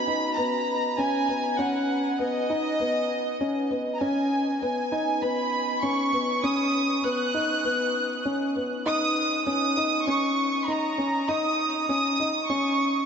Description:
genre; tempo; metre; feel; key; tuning
electronica; 99 BPM; 4/4; straight; G# minor; A4 = 440 Hz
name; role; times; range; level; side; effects
warm chamber violin section; melody; 0.0-13.1 s; D#5 to F#6; -26 LUFS; right 2 dB; ping-pong delay
felt-muted upright piano; riff; 0.0-13.0 s; B3 to D#4; -26 LUFS; left 1 dB; ping-pong delay
room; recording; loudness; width
wet huge ambient reverb, RT60 7.3 s; dreamy mix soaked in reverb, nothing above 7.7 kHz; -23 LUFS; side -7 dB against mid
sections
0.0-13.1 A section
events
none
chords
0.0 G#m7 (rootless); 8.9 D#5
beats
0.38 0.99 | 1.59 2.20 2.80 3.41 | 4.02 4.62 5.23 5.83 | 6.44 7.05 7.65 8.26 | 8.87 9.47 10.08 10.68 | 11.29 11.89 12.50

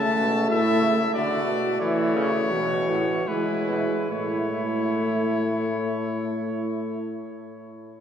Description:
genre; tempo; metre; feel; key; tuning
classical, imitative canzona for brass ensemble; 68-99 BPM; 3/4; straight; A major; A4 = 443 Hz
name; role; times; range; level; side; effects
clear cornet; melody; 0.0-7.2 s; B4 to A5; -28 LUFS; left 3 dB; none
dark trumpet; second line; 0.0-7.2 s; C#4 to F#4; -30 LUFS; right 3 dB; none
warm euphonium; accompaniment; 0.0-7.2 s; E3 to A3; -26 LUFS; equal; none
clear bass trombone; bass; 0.0-7.2 s; A2 to E3; -29 LUFS; equal; none
room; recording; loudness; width
wet cathedral reverb, RT60 5.2 s; heard from further back in the room; -22 LUFS; side -8 dB against mid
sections
0.0-4.1 A section; 4.1-8.0 B section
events
slowing down 0.0-4.1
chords
0.0 A; 1.1 Bm/D; 1.8 A; 3.3 E; 4.1 A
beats
0.51 1.14 | 1.81 2.52 3.28 | 4.11 4.98 5.86 | 6.74

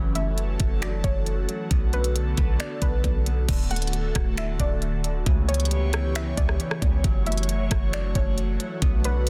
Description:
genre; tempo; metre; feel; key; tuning
hip hop, atmospheric cloud-rap; 135 BPM; 4/4; half-time; unclear; A4 = 438 Hz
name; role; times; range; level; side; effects
airy breathy pad; sustained chords; 0.0-9.3 s; D3 to C#5; -34 LUFS; equal; chorus, phaser, sidechain pumping
Celtic harp; arpeggios; 0.0-9.3 s; C#3 to B4; -40 LUFS; equal; tape echo
warm 808-style bass; bass; 0.0-9.3 s; D1 to C#2; -28 LUFS; equal; none
warbly dusty pluck; melody; 0.2-9.3 s; B4 to F#5; -37 LUFS; equal; chorus, tape echo
trap drum kit; drums; 0.2-9.3 s; crash cymbal, finger snaps, hi-hat, kick drum, rim click; -27 LUFS; equal; soft clipping on snare
room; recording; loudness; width
little or no reverb; dense, heavily limited modern master; -24 LUFS; mono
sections
0.0-3.5 A section; 3.5-9.3 B section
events
none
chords
0.0 F#m7; 1.7 Bm7; 3.5 D; 5.3 C#m7b5; 7.0 F#m7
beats
0.38 0.82 1.26 | 1.71 2.15 2.60 3.04 | 3.49 3.93 4.38 4.82 | 5.26 5.71 6.15 6.60 | 7.04 7.49 7.93 8.38 | 8.82 9.26

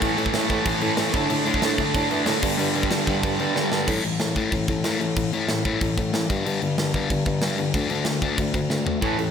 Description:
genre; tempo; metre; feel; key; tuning
punk rock; 186 BPM; 4/4; straight; unclear; A4 = 437 Hz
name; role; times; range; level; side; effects
raw garage guitar; riff; 0.0-3.9, 9.0-9.3 s; G2 to D4; -26 LUFS; right 12 dB; overdrive, slapback echo
sludgy distorted guitar; riff; 0.0-9.3 s; G2 to D4; -24 LUFS; left 5 dB; overdrive
mellow bassoon; bass; 0.0-9.3 s; D2 to E3; -29 LUFS; right 1 dB; none
tight metal drum kit; drums; 0.0-9.3 s; crash cymbal, kick drum, snare drum, toms; -26 LUFS; equal; none
room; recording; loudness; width
moderate lush hall reverb, RT60 1.9 s, small room ambience; big arena sound; -20 LUFS; side -7 dB against mid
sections
0.0-3.9 A section; 3.9-9.3 B section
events
drum fill 3.6-3.9, 8.7-9.0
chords
0.0 A5; 1.1 D5/A; 2.4 G5; 3.9 A5; 6.3 G5; 7.7 D5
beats
| 0.01 0.34 0.66 0.98 | 1.30 1.62 1.94 2.27 | 2.59 2.91 3.23 3.55 | 3.88 4.20 4.52 4.84 | 5.16 5.49 5.81 6.13 | 6.45 6.77 7.10 7.42 | 7.74 8.06 8.38 8.70 | 9.02

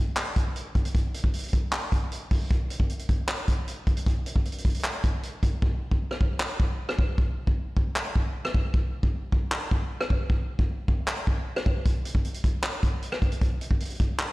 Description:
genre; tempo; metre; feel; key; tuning
hip hop; 154 BPM; 4/4; half-time; none; none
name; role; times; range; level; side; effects
vintage drum kit; drums; 0.2-14.3 s; handclaps, hi-hat, kick drum, rim click; -24 LUFS; equal; none
room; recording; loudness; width
light reverb; played on a big sound system in a bare room, stone room reverb; -24 LUFS; side -20 dB against mid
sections
0.0-14.3 A section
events
hi-hats muted 5.6-11.9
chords
none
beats
0.17 0.56 | 0.95 1.34 1.73 2.12 | 2.50 2.90 3.29 3.67 | 4.06 4.45 4.84 5.23 | 5.62 6.01 6.40 6.79 | 7.18 7.57 7.96 8.35 | 8.74 9.13 9.52 9.91 | 10.30 10.69 11.08 11.47 | 11.86 12.25 12.63 13.03 | 13.41 13.80 14.19

